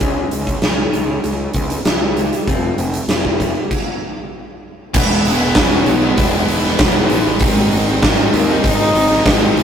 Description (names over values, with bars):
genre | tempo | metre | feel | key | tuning
quiet-loud alternative rock | 97 BPM | 4/4 | straight | E major | A4 = 441 Hz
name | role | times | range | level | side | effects
electric guitar at the edge of break-up | arpeggios | 0.0-3.7 s | C#3 to F4 | -27 LUFS | left 4 dB | none
fuzz picked electric bass | bass | 0.0-9.6 s | E1 to D#2 | -21 LUFS | equal | overdrive
huge arena drum kit | drums | 0.0-9.6 s | crash cymbal, hi-hat, kick drum, snare drum | -16 LUFS | equal | none
distorted electric guitar | riff | 4.9-9.6 s | E2 to G#3 | -26 LUFS | equal | none
high-gain distorted guitar | riff | 4.9-9.6 s | G#2 to E4 | -22 LUFS | left 5 dB | distortion
tight distorted guitar | riff | 4.9-9.6 s | G#2 to E4 | -23 LUFS | right 7 dB | distortion
dark cello | melody | 5.0-9.5 s | G#3 to D#4 | -19 LUFS | equal | none
room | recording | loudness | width
light reverb | rough rehearsal-room recording, tube saturation | -13 LUFS | side -8 dB against mid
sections
0.0-5.0 A section; 5.0-9.6 B section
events
stop 3.7-5.0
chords
0.0 C#5; 2.5 F5; 5.0 E; 7.4 G#